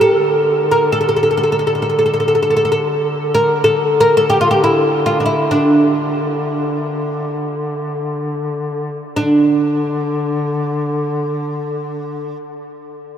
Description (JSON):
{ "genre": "Arabic maqam ensemble", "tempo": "free time", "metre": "none", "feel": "none", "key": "unclear", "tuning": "A4 = 442 Hz", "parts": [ { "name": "oud", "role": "melody", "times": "0.0-12.4 s", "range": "D4 to Bb4", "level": "-14 LUFS", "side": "equal", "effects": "none" }, { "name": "warm duduk", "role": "drone", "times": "0.1-12.4 s", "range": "D3", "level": "-21 LUFS", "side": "left 1 dB", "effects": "none" } ], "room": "wet huge ambient reverb, RT60 8.5 s", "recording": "in a vast, echoing space", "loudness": "-14 LUFS", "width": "side -9 dB against mid", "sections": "0.0-9.2 A section; 9.2-13.2 B section", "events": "none", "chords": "none" }